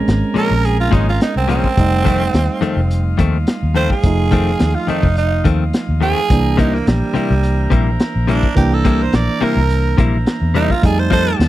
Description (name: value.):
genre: straight-eighth soul blues.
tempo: 106 BPM.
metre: 4/4.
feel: straight.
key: F mixolydian.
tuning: A4 = 440 Hz.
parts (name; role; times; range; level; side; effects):
tine electric piano; accompaniment; 0.0-11.5 s; E3 to Eb4; -21 LUFS; right 3 dB; overdrive.
clear horn section; sustained chords; 0.0-11.5 s; F4 to Bb5; -29 LUFS; right 1 dB; none.
vintage muted fingered electric bass; bass; 0.1-11.5 s; F1 to F2; -17 LUFS; equal; none.
crunchy breakbeat drum kit; drums; 0.1-11.5 s; hi-hat, kick drum, snare drum; -17 LUFS; equal; none.
direct-recorded clean electric guitar; stabs; 0.3-11.3 s; F2 to A4; -18 LUFS; left 6 dB; none.
growling tenor saxophone; second line; 0.4-11.4 s; G3 to D5; -20 LUFS; right 5 dB; none.
room: small room ambience.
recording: dry, close 1970s-style studio recording.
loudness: -13 LUFS.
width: side -15 dB against mid.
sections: 0.0-11.5 A section.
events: tenor saxophone solo 0.0-11.5.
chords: 0.0 Bbm7; 1.8 F7; 6.3 C7; 10.8 F7.